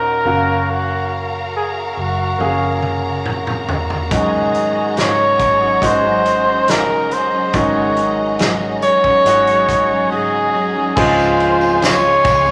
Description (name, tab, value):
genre	pop ballad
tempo	70 BPM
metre	4/4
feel	straight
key	unclear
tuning	A4 = 440 Hz
part	warm flugelhorn	melody	0.0-12.5 s	Gb4 to Db5	-18 LUFS	equal	none
part	clear concert grand piano	accompaniment	0.0-12.5 s	Ab2 to F5	-22 LUFS	equal	none
part	warm studio string section	sustained chords	0.0-12.5 s	Gb4 to C6	-28 LUFS	equal	none
part	vintage muted fingered electric bass	bass	0.0-12.5 s	Gb1 to Eb2	-29 LUFS	equal	none
part	natural country drum kit	drums	2.4-12.5 s	crash cymbal, hi-hat, kick drum, ride cymbal, snare drum, toms	-24 LUFS	equal	none
part	picked steel-string acoustic guitar	arpeggios	4.1-12.5 s	Ab2 to Ab4	-28 LUFS	equal	none
part	dark French horn section	second line	11.0-12.5 s	F3 to F4	-25 LUFS	equal	none
part	tambourine	percussion	11.2-12.5 s	none	-36 LUFS	equal	none
room	wet large studio reverb, RT60 1.2 s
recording	none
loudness	-16 LUFS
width	mono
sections	0.0-11.0 A section; 11.0-12.5 B section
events	drum fill 2.4-4.1; break 10.1-11.0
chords	0.3 Gbmaj7; 4.1 Ab7sus4; 11.0 Dbmaj7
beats	| 0.69 1.54 2.40 3.26 | 4.11 4.97 5.83 6.69 | 7.54 8.40 9.26 10.11 | 10.97 11.83